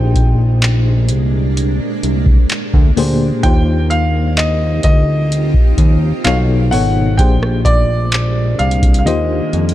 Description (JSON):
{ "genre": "contemporary R&B", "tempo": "64 BPM", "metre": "4/4", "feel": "straight", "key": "Eb major", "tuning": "A4 = 440 Hz", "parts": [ { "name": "warm concert grand piano", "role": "melody", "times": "0.0-9.7 s", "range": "D5 to G5", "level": "-20 LUFS", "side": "equal", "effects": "digital delay" }, { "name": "FM electric piano with tremolo", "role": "accompaniment", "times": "0.0-9.7 s", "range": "Bb2 to C#5", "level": "-21 LUFS", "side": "left 4 dB", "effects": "none" }, { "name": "granular cloud pad", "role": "sustained chords", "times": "0.0-9.7 s", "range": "Ab3 to G4", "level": "-23 LUFS", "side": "right 2 dB", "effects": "built-in reverb, sidechain pumping" }, { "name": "fat analog bass", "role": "bass", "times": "0.0-9.7 s", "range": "Ab1 to F2", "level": "-15 LUFS", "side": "equal", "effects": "none" }, { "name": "booming analog drum machine", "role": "drums", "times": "0.2-9.7 s", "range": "handclaps, hi-hat, kick drum, rim click", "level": "-13 LUFS", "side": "equal", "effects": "none" } ], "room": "little or no reverb", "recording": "dark, warm production", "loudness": "-11 LUFS", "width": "side -14 dB against mid", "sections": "0.0-9.7 A section", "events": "none", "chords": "0.0 Bb13; 3.4 Eb69; 6.2 B9; 7.2 Bb13; 9.1 Eb6", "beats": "0.62 1.56 2.50 | 3.44 4.38 5.31 6.25 | 7.19 8.12 9.06" }